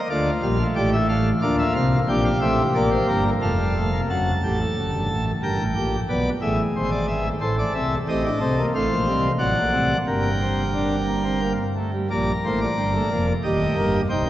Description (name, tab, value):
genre	classical, baroque-style 4-part fugue for pipe organ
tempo	90 BPM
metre	3/4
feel	straight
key	G minor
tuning	A4 = 440 Hz
part	pipe organ, principal chorus	solo	0.0-14.3 s	C1 to A5	-20 LUFS	equal	none
room	wet cathedral reverb, RT60 4.9 s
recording	worn, warbling old tape, cassette tape, warbly pitch drift, nothing above 7.8 kHz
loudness	-20 LUFS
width	side -13 dB against mid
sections	0.0-4.1 A section; 4.1-12.1 B section; 12.1-14.3 A section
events	none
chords	0.1 Dm; 1.4 Bb/D; 2.1 Gm; 3.4 Fadd9; 4.1 F#m; 5.4 Gm; 6.1 E7; 7.4 Am; 8.1 Am7b5; 9.4 D/A; 10.1 Gm; 13.4 Eb